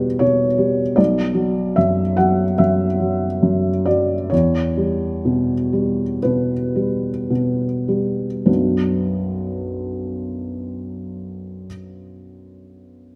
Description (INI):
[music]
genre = neoclassical minimalist piano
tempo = 49-79 BPM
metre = 4/4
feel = rubato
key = B minor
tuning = A4 = 444 Hz
[part]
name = felt-muted upright piano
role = solo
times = 0.0-13.2 s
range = B1 to F#5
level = -20 LUFS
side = equal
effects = none
[sound]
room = light reverb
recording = none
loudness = -19 LUFS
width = mono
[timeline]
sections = 0.0-8.5 A section; 8.5-13.2 B section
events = slowing down 0.0-8.5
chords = 0.0 Em; 1.0 Bm; 4.3 Em; 8.5 Bm